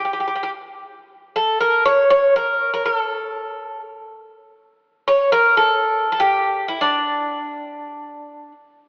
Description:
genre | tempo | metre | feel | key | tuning
greek folk | 121 BPM | 4/4 | straight | unclear | A4 = 441 Hz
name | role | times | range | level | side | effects
Greek bouzouki | solo | 0.0-8.5 s | D4 to C#5 | -16 LUFS | equal | none
room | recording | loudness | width
wet plate reverb, RT60 3.0 s | heard from further back in the room, AM radio sound | -16 LUFS | side -30 dB against mid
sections
0.0-8.8 A section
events
none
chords
none

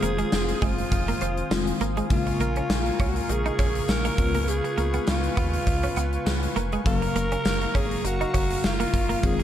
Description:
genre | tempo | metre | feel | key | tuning
1980s-style pop | 101 BPM | 4/4 | swing 55% on 16ths | unclear | A4 = 440 Hz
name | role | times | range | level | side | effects
breathy alto saxophone | melody | 0.0-9.4 s | F4 to Bb4 | -29 LUFS | right 1 dB | tape echo
FM electric piano with tremolo | accompaniment | 0.0-9.4 s | Db3 to F5 | -31 LUFS | left 6 dB | none
warm analog pad | sustained chords | 0.0-9.4 s | Bb4 to Eb6 | -34 LUFS | equal | chorus
twelve-string electric guitar | riff | 0.0-9.4 s | Ab3 to Eb4 | -32 LUFS | right 4 dB | wide subtle chorus
round analog bass | bass | 0.0-9.4 s | F1 to Eb2 | -28 LUFS | equal | none
gated 80s drum kit | drums | 0.0-9.4 s | hi-hat, kick drum, snare drum, tambourine | -26 LUFS | equal | none
tambourine | percussion | 0.0-9.4 s | none | -49 LUFS | right 8 dB | none
room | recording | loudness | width
light reverb | dark, warm production | -22 LUFS | side -11 dB against mid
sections
0.0-9.4 A section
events
none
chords
0.0 Fm7; 2.1 Bbm7; 4.2 Db7; 6.9 Gbmaj7

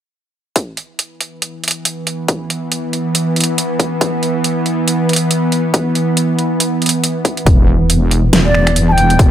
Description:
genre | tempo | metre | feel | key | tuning
deep dubstep | 139 BPM | 4/4 | swing 57% on 16ths, half-time | unclear | A4 = 438 Hz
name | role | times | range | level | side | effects
bowed-like drone | sustained chords | 1.7-9.3 s | E3 to B3 | -16 LUFS | right 1 dB | built-in reverb
dubstep drum kit | drums | 0.6-9.3 s | finger snaps, hi-hat, snare drum | -16 LUFS | right 1 dB | none
electronic kick drum | drums | 0.6-9.3 s | none | -13 LUFS | equal | high-pass filter on kick
wobble bass | bass | 7.5-9.3 s | E1 | -14 LUFS | equal | chorus
breathy bright ney | melody | 8.4-9.2 s | D5 to A5 | -14 LUFS | equal | none
room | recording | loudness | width
light reverb | none | -13 LUFS | side -10 dB against mid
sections
0.6-7.5 A section; 7.5-9.3 B section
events
build-up 7.5-9.3; filter sweep on synth drone 7.5-9.3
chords
0.6 E5

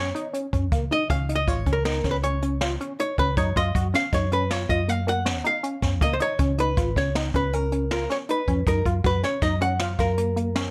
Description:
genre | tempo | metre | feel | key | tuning
progressive instrumental, band music in an uneven meter | 158 BPM | 7/4 | straight | unclear | A4 = 440 Hz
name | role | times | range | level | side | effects
archtop guitar, miked and amplified | melody | 0.0-10.7 s | Bb4 to Gb5 | -28 LUFS | equal | plate reverb
tight sequenced synth | arpeggios | 0.0-10.7 s | Bb3 to Gb4 | -32 LUFS | equal | chorus, plate reverb
hollow-body short-scale fingered electric bass | bass | 0.0-10.7 s | Ab1 to Gb2 | -28 LUFS | equal | none
jazz brush drum kit | drums | 0.2-10.6 s | hi-hat, kick drum, snare drum | -30 LUFS | equal | none
room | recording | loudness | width
light reverb | none | -24 LUFS | mono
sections
0.0-10.7 A section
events
hollow-body jazz guitar solo 0.0-10.7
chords
0.0 Gb5; 0.7 N.C.; 3.4 Gbmaj7(no3); 6.0 Db6; 8.7 Gbmaj7

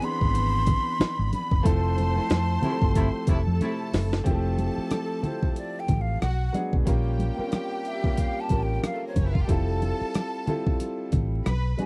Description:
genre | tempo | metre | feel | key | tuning
lush 1970s-style soul | 92 BPM | 4/4 | swing 58% on 16ths | F major | A4 = 441 Hz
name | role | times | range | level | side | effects
breathy hollow jazz flute | melody | 0.0-11.9 s | C5 to C6 | -33 LUFS | equal | none
clear studio string section | second line | 0.0-11.8 s | A3 to C6 | -38 LUFS | equal | none
clear concert grand piano | accompaniment | 0.0-11.9 s | E3 to B4 | -33 LUFS | equal | none
breakbeat sampler-style drum kit | drums | 0.0-11.9 s | hi-hat, kick drum, rim click, snare drum | -28 LUFS | equal | none
vintage muted fingered electric bass | bass | 0.2-11.7 s | F1 to F2 | -28 LUFS | equal | none
congas | percussion | 0.3-11.9 s | none | -32 LUFS | equal | none
mellow horn section | stabs | 2.6-4.1 s | C3 to E4 | -34 LUFS | equal | none
room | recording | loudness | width
little or no reverb | dry, close 1970s-style studio recording, vinyl crackle | -26 LUFS | mono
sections
0.0-4.3 A section; 4.3-11.9 B section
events
band accent 1.7-4.3; drum fill 3.6-4.3; flute solo 4.3-11.9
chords
0.0 E7b13; 1.7 Fmaj7; 4.3 Fmaj9; 6.2 Bm6; 6.9 Bbm6; 9.5 Fmaj9

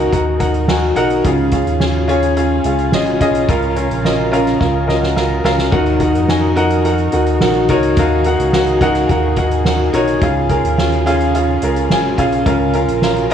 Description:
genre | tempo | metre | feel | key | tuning
piano-driven pop | 107 BPM | 4/4 | straight | Eb minor | A4 = 438 Hz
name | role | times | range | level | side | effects
warm concert grand piano | accompaniment | 0.0-13.3 s | Db3 to Bb5 | -15 LUFS | left 1 dB | none
warm studio string section | sustained chords | 0.0-13.3 s | Db3 to Bb4 | -23 LUFS | right 4 dB | none
round analog bass | bass | 0.0-13.3 s | Ab1 to F2 | -20 LUFS | equal | none
soft-mallet drum kit | drums | 0.1-13.3 s | crash cymbal, hi-hat, kick drum, snare drum | -20 LUFS | right 1 dB | none
room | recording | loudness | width
light reverb, small room reverb | worn, warbling old tape, cassette tape, warbly pitch drift | -12 LUFS | side -8 dB against mid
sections
0.0-13.3 A section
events
grand piano fill 0.0-1.2, 4.6-5.7, 13.0-13.3; drum fill 4.6-5.7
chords
0.0 Ebm; 1.2 Db; 3.5 Bbm; 5.7 Ebm; 10.2 Db; 12.5 Bbm

